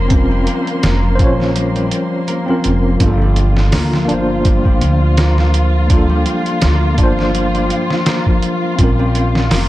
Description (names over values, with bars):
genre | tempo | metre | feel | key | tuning
trip hop | 83 BPM | 4/4 | swing 56% on 16ths | G minor | A4 = 440 Hz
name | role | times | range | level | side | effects
tine electric piano | accompaniment | 0.0-9.7 s | Bb3 to Db5 | -19 LUFS | equal | tremolo, tape echo
warm studio violin section | sustained chords | 0.0-9.7 s | Bb3 to C6 | -22 LUFS | left 1 dB | vintage 12-bit sampler grit
concert harp | arpeggios | 0.0-9.7 s | F3 to Bb3 | -21 LUFS | left 2 dB | tape echo
upright bass | bass | 0.0-9.7 s | F1 to D2 | -15 LUFS | equal | none
trip hop sampler-style drum kit | drums | 0.1-9.7 s | hi-hat, kick drum, snare drum | -16 LUFS | equal | none
room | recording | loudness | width
small room ambience | dark, warm production | -12 LUFS | side -16 dB against mid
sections
0.0-9.7 A section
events
break 1.6-3.0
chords
0.0 Bbmadd9; 3.0 Gm7; 8.8 Bbmadd9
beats
| 0.11 0.84 1.56 2.28 | 3.01 3.73 4.45 5.17 | 5.90 6.62 7.34 8.07 | 8.79 9.51